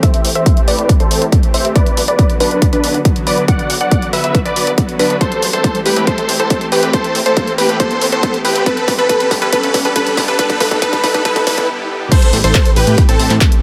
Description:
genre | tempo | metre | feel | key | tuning
uplifting trance | 139 BPM | 4/4 | straight | A dorian | A4 = 439 Hz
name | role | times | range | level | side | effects
big supersaw lead | melody | 0.0-13.3 s | C4 to F#5 | -19 LUFS | equal | cassette tape, sidechain pumping, low-pass filter, delay
unison pluck | second line | 0.0-13.3 s | A4 to F#5 | -25 LUFS | equal | none
supersaw pad | sustained chords | 0.0-13.6 s | D3 to G4 | -25 LUFS | equal | sidechain pumping
electronic kick drum | drums | 0.0-13.5 s | none | -16 LUFS | equal | none
punchy analog drum machine | drums | 0.0-13.6 s | crash cymbal, handclaps, hi-hat | -22 LUFS | equal | none
riser | sound effects | 1.7-11.7 s | none | -29 LUFS | equal | none
plucky analog bass | bass | 0.2-13.4 s | F#1 to A2 | -24 LUFS | equal | sidechain pumping, high-pass filter
room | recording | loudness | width
light reverb | high-pass filter | -14 LUFS | mono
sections
0.0-12.1 A section; 12.1-13.6 B section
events
build-up 0.0-12.1; filter sweep on supersaw synth 0.0-12.1; filter sweep 0.0-12.1; drum fill 5.2-11.7; break 11.7-12.1; drop 12.1-13.6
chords
0.0 Am7; 1.8 Bm; 5.2 Am7; 8.7 G; 12.1 Am7

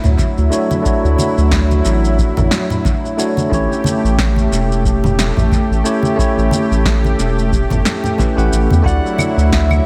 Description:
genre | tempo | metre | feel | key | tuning
sunset chillout | 90 BPM | 4/4 | swing 57% on 16ths | D major | A4 = 441 Hz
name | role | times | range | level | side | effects
bell-like tine electric piano | accompaniment | 0.0-9.9 s | A3 to F#5 | -21 LUFS | equal | low-pass filter, dub echo
lush unison pad | sustained chords | 0.0-9.9 s | F#3 to G4 | -24 LUFS | equal | chorus
round analog bass | bass | 0.0-9.8 s | E1 to E2 | -17 LUFS | equal | none
electronic shaker, snare drum and claves | drums | 0.0-9.8 s | none | -24 LUFS | equal | analog delay
congas | percussion | 0.0-9.8 s | none | -24 LUFS | equal | analog delay
electronic kick drum | drums | 0.2-9.7 s | none | -21 LUFS | equal | none
mellow soprano saxophone | melody | 8.9-9.9 s | E5 to F#5 | -24 LUFS | equal | dub echo
room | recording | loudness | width
light reverb | echo-heavy mix | -15 LUFS | mono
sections
0.0-9.9 A section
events
filter sweep on tine electric piano 0.0-9.9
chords
0.0 Dmaj9; 3.5 A7; 8.9 Dadd9

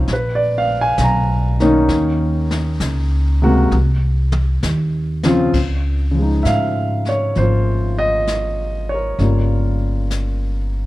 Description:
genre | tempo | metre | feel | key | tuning
jazz ballad | 66 BPM | 4/4 | swing 68% on 8ths | Db major | A4 = 441 Hz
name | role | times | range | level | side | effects
warm grand piano | accompaniment | 0.0-10.9 s | C3 to Bb5 | -18 LUFS | equal | none
upright bass | bass | 0.0-10.9 s | G1 to Ab2 | -18 LUFS | equal | none
jazz brush drum kit | drums | 0.1-10.9 s | brushed snare drum, crash cymbal, hi-hat, kick drum, snare drum, toms | -26 LUFS | left 2 dB | none
room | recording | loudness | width
light reverb | dark, warm production | -15 LUFS | side -17 dB against mid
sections
0.0-5.5 A section; 5.5-10.9 B section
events
drum fill 3.7-5.5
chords
0.1 Db13/Bb; 1.9 Ebm7; 3.7 Cmadd11; 5.5 Dbadd9; 9.2 Gm7b5

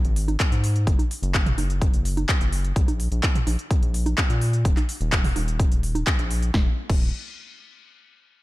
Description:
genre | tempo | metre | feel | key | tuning
progressive house | 127 BPM | 4/4 | straight | Eb minor | A4 = 440 Hz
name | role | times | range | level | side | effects
round analog bass | bass | 0.0-7.1 s | Eb1 to Bb2 | -24 LUFS | equal | sidechain pumping
big-room dance drum kit | drums | 0.0-7.0 s | crash cymbal, handclaps, hi-hat, snare drum | -28 LUFS | left 1 dB | sidechain pumping on hats, sidechain pumping on cymbals
electronic congas and toms | percussion | 0.3-6.0 s | none | -31 LUFS | right 4 dB | sidechain pumping on perc, sidechain pumping on toms
electronic kick drum | drums | 0.4-7.0 s | none | -21 LUFS | equal | none
room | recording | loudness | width
little or no reverb | dark, warm production | -20 LUFS | side -18 dB against mid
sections
0.0-6.5 A section; 6.5-8.4 B section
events
none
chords
none

